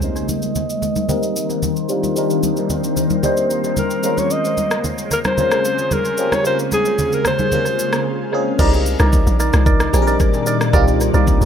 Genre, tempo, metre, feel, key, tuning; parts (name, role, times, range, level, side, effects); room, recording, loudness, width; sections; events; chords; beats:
amapiano; 112 BPM; 4/4; straight; C minor; A4 = 444 Hz
breathy alto saxophone; melody; 0.0-8.3 s; Ab4 to Eb5; -20 LUFS; left 1 dB; low-pass filter, analog delay
barking FM electric piano; accompaniment; 0.0-11.5 s; G3 to C5; -21 LUFS; left 1 dB; phaser, low-pass filter, analog delay
ethereal airy pad; sustained chords; 0.0-11.5 s; Bb2 to D5; -23 LUFS; left 1 dB; ensemble chorus, built-in reverb, phaser, sidechain pumping, low-pass filter
smooth R&B drum kit; drums; 0.0-11.5 s; crash cymbal, kick drum, rim click, shaker; -21 LUFS; equal; analog delay
congas; percussion; 0.3-7.6 s; -25 LUFS; equal; analog delay
percussive organ stab; stabs; 8.6-11.5 s; Eb4 to D5; -23 LUFS; right 4 dB; chorus, analog delay
hollow log drum bass; bass; 8.6-11.5 s; Bb1 to C2; -16 LUFS; equal
light reverb; echo-heavy mix; -15 LUFS; side -8 dB against mid
0.0-8.6 A section; 8.6-11.5 B section
filter sweep 0.0-8.6; break 8.1-8.6
0.0 Cm9; 4.0 Bbm9; 8.6 Cm9
| 0.02 0.56 1.09 1.63 | 2.16 2.70 3.23 3.77 | 4.31 4.84 5.38 5.91 | 6.45 6.98 7.52 8.06 | 8.59 9.13 9.66 10.20 | 10.73 11.27